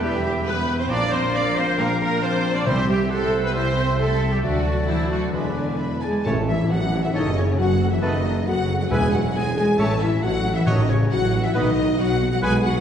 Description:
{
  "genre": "cinematic, heroic adventure film score",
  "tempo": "136 BPM",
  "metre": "4/4",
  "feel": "straight",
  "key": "A lydian from 6.3 s",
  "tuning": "A4 = 440 Hz",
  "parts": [
    { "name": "warm studio violin section", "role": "melody", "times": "0.0-12.8 s", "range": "C#5 to D6", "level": "-35 LUFS", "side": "left 2 dB", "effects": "none" },
    { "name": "clear clarinet", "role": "second line", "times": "0.0-12.6 s", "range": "B4 to G5", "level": "-34 LUFS", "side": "left 1 dB", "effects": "none" },
    { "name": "silver concert flute", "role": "second line", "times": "0.0-12.8 s", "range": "B4 to A5", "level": "-32 LUFS", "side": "left 1 dB", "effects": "none" },
    { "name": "warm oboe", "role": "second line", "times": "0.0-12.6 s", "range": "E5 to B5", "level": "-35 LUFS", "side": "right 1 dB", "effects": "none" },
    { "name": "warm symphonic violin section", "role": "second line", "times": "0.0-12.8 s", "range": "A4 to A5", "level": "-34 LUFS", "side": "left 3 dB", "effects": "none" },
    { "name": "rich symphonic viola section", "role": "accompaniment", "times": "0.0-12.7 s", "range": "B3 to D5", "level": "-28 LUFS", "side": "right 1 dB", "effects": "none" },
    { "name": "clear trombone section", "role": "sustained chords", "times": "0.0-12.6 s", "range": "D3 to B3", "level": "-36 LUFS", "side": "right 2 dB", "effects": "none" },
    { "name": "mellow French horn section", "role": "sustained chords", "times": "0.0-12.8 s", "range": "Bb3 to A4", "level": "-26 LUFS", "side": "left 3 dB", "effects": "none" },
    { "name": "concert harp", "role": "arpeggios", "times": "0.0-12.8 s", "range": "E2 to C#5", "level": "-32 LUFS", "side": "left 4 dB", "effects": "none" },
    { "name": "clear trumpet", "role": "stabs", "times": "0.0-12.6 s", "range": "D4 to D5", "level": "-32 LUFS", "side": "right 1 dB", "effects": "none" },
    { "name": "mellow tuba", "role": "bass", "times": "0.0-12.8 s", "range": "E1 to D2", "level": "-27 LUFS", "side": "right 1 dB", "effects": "none" },
    { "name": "rich symphonic double bass section", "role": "bass", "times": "0.0-12.8 s", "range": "E1 to E2", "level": "-26 LUFS", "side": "right 1 dB", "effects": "none" },
    { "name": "warm symphonic cello section", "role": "bass", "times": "0.0-12.8 s", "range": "C#3 to D4", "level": "-27 LUFS", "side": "right 1 dB", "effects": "none" },
    { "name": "timpani", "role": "percussion", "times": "2.7-3.3, 6.3-11.3 s", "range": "E2 to C3", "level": "-27 LUFS", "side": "equal", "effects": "none" },
    { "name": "tam-tam", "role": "percussion", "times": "6.3-8.0 s", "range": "none", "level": "-34 LUFS", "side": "left 1 dB", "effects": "none" }
  ],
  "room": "wet scoring stage reverb, RT60 1.5 s",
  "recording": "heard from further back in the room, nothing above 10.4 kHz",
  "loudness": "-19 LUFS",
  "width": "side -8 dB against mid",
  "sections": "0.0-6.3 A section; 6.3-12.8 B section",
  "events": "band accent 6.3-6.7",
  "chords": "0.0 Em; 0.9 Bb; 2.7 C; 4.4 D; 5.3 E7; 6.3 A; 7.1 F#m; 8.0 B7/F#; 8.9 E; 9.8 A; 10.7 F#m/A; 11.6 B",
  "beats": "0.03 0.47 | 0.91 1.35 1.79 2.23 | 2.67 3.11 3.55 3.99 | 4.43 4.88 5.34 5.80 | 6.26 6.71 7.15 7.59 | 8.03 8.47 8.91 9.35 | 9.79 10.23 10.67 11.11 | 11.55 11.99 12.43"
}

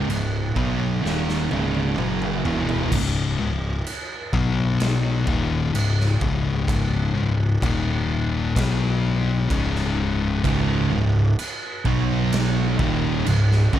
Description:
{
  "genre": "stoner and doom metal",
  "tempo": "64 BPM",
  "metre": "4/4",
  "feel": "straight",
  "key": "C# minor",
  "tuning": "A4 = 437 Hz",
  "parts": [
    { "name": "thick fuzz guitar", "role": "riff", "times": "0.0-13.8 s", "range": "C#2 to B3", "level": "-22 LUFS", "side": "left 4 dB", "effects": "distortion" },
    { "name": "thick fuzz guitar", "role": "riff", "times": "0.0-2.9, 10.4-13.8 s", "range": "C#2 to B3", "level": "-24 LUFS", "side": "right 8 dB", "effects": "distortion" },
    { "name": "fuzz picked electric bass", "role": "bass", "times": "0.0-13.8 s", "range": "C#1 to B1", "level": "-27 LUFS", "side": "equal", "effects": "overdrive, tube saturation" },
    { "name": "raw garage drum kit", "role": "drums", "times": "0.1-13.8 s", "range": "crash cymbal, kick drum, snare drum, toms", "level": "-27 LUFS", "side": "right 1 dB", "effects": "none" }
  ],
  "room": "small room ambience",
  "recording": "none",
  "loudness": "-20 LUFS",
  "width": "side -11 dB against mid",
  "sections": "0.0-2.9 A section; 2.9-13.8 B section",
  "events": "drum fill 1.0-2.9",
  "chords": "0.0 C#m; 2.9 C#5; 4.3 B5; 5.3 C#5; 7.6 D#5; 8.6 B5; 9.5 C#5; 11.9 B5; 12.8 C#5",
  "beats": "0.09 1.03 1.97 | 2.92 3.86 4.80 5.74 | 6.68 7.62 8.56 9.50 | 10.44 11.38 12.32 13.26"
}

